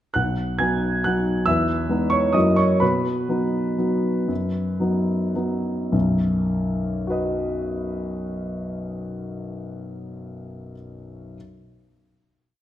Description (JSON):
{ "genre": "classical, piano waltz", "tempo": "101-148 BPM", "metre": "3/4", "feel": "rubato", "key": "B major", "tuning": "A4 = 440 Hz", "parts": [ { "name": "warm grand piano", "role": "solo", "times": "0.1-11.4 s", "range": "B1 to G#6", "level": "-21 LUFS", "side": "equal", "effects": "none" } ], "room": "wet recital hall reverb, RT60 1.7 s", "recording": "minimal, uncompressed stereo recording", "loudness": "-20 LUFS", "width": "side -12 dB against mid", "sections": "0.2-5.9 A section; 5.9-9.3 final chord", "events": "slowing down 2.1-5.9", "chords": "0.2 B; 1.5 Emaj7; 2.3 F#7; 2.8 B", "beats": "| 0.15 0.60 1.05 | 1.47 1.90 2.35 | 2.81 3.28 3.79 | 4.30 4.81 5.36 | 5.93 6.49 7.07 | 7.62 8.15 8.72" }